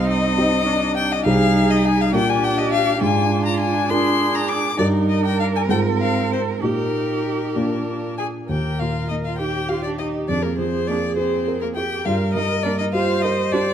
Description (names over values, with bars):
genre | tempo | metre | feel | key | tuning
quick classical-period movement for piano quartet | 68 BPM (dotted quarters) | 6/8 | straight | Eb major | A4 = 436 Hz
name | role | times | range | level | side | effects
rich violin | melody | 0.0-13.7 s | Bb4 to D6 | -23 LUFS | left 7 dB | none
warm cello | second line | 0.0-13.6 s | Bb3 to Bb4 | -27 LUFS | right 7 dB | none
dark concert grand piano | accompaniment | 0.0-13.7 s | C2 to Bb4 | -21 LUFS | equal | none
dark viola | accompaniment | 0.0-13.7 s | C4 to C5 | -25 LUFS | right 3 dB | none
room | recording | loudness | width
wet recital hall reverb, RT60 1.6 s | close, detailed microphones | -18 LUFS | side -9 dB against mid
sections
0.0-8.5 A section; 8.5-13.7 B section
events
none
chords
0.0 Cm; 1.2 Ab/C; 2.1 Bb; 3.0 Bb7/Ab; 4.8 Eb/G; 5.7 Fm/Ab; 6.6 Eb/Bb; 7.6 Bb; 8.5 Eb; 10.3 Bb5/F; 12.1 Ebmaj13/G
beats
0.37 | 1.24 2.12 | 3.01 3.89 | 4.78 5.69 | 6.63 7.56 | 8.50 9.40 | 10.29 11.18 | 12.06 12.95